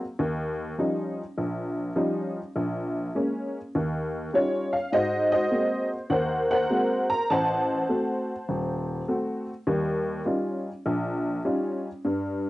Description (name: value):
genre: solo jazz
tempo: 101 BPM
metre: 4/4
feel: swing 67% on 8ths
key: unclear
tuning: A4 = 440 Hz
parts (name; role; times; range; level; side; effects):
- honky-tonk upright piano; solo; 0.2-12.5 s; Eb1 to Bb5; -24 LUFS; equal; cassette tape
room: light reverb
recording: home recording on cassette, nothing above 11.0 kHz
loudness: -24 LUFS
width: side -17 dB against mid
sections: 0.0-12.5 A section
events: none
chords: 0.2 Eb9; 2.6 Bbm7; 3.7 Eb9; 4.9 Ab9; 7.3 Adim7; 9.7 Eb9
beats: | 0.19 0.78 1.38 1.97 | 2.56 3.15 3.74 4.33 | 4.93 5.52 6.11 6.70 | 7.30 7.89 8.48 9.07 | 9.66 10.26 10.85 11.44 | 12.04